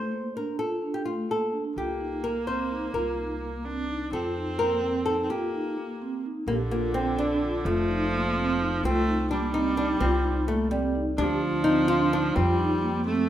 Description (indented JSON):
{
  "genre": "contemporary instrumental, chamber music in an uneven meter",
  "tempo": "255 BPM (eighths)",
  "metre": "5/8",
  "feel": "straight",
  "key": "C dorian",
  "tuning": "A4 = 440 Hz",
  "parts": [
    { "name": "flamenco guitar", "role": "melody", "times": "0.0-13.3 s", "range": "G3 to C5", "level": "-28 LUFS", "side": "left 1 dB", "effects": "none" },
    { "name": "vibraphone with soft mallets", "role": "arpeggios", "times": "0.1-13.2 s", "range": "A3 to G4", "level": "-29 LUFS", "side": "right 2 dB", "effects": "none" },
    { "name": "rich viola", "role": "second line", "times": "1.8-13.3 s", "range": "D3 to D4", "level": "-30 LUFS", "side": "right 1 dB", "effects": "none" },
    { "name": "upright bass", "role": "bass", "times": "1.8-13.3 s", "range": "F1 to F2", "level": "-31 LUFS", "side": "equal", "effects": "none" }
  ],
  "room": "moderate recital hall reverb, RT60 1.7 s",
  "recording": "none",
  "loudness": "-24 LUFS",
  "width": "side -11 dB against mid",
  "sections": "0.0-6.5 A section; 6.5-13.3 B section",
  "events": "break 5.3-6.5",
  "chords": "0.0 Bbmaj7; 1.8 Cm7; 4.1 F7; 5.3 Cm7; 6.5 Bb; 7.7 F; 8.8 Cm; 11.2 Dm; 12.4 Fadd9",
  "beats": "0.12 0.35 | 0.59 0.83 1.06 1.30 1.53 | 1.77 2.00 2.24 2.48 2.71 | 2.95 3.18 3.42 3.66 3.89 | 4.13 4.36 4.60 4.83 5.07 | 5.31 5.54 5.78 6.01 6.25 | 6.48 6.72 6.95 7.19 7.42 | 7.66 7.89 8.13 8.37 8.60 | 8.84 9.07 9.31 9.54 9.78 | 10.01 10.25 10.48 10.71 10.95 | 11.19 11.42 11.65 11.89 12.12 | 12.36 12.60 12.83 13.06"
}